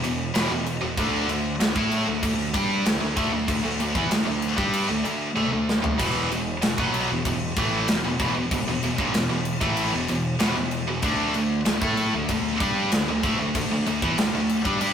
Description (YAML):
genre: heavy metal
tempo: 95 BPM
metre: 4/4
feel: straight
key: unclear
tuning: A4 = 441 Hz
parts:
  - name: heavy high-gain guitar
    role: riff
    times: 0.0-14.9 s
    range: E2 to A4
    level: -24 LUFS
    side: equal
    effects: distortion
  - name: growling picked electric bass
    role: bass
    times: 0.0-14.9 s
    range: E1 to A2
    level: -29 LUFS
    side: equal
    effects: overdrive
  - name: tight metal drum kit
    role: drums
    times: 0.0-14.9 s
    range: crash cymbal, kick drum, snare drum, splash cymbal, toms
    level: -27 LUFS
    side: equal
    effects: none
room: moderate small room reverb, RT60 0.5 s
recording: rough rehearsal-room recording, warm saturation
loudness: -21 LUFS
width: side -8 dB against mid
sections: 0.0-14.9 A section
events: drum fill 5.4-6.0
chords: 0.0 E5; 1.0 D5; 6.0 E5; 11.0 D5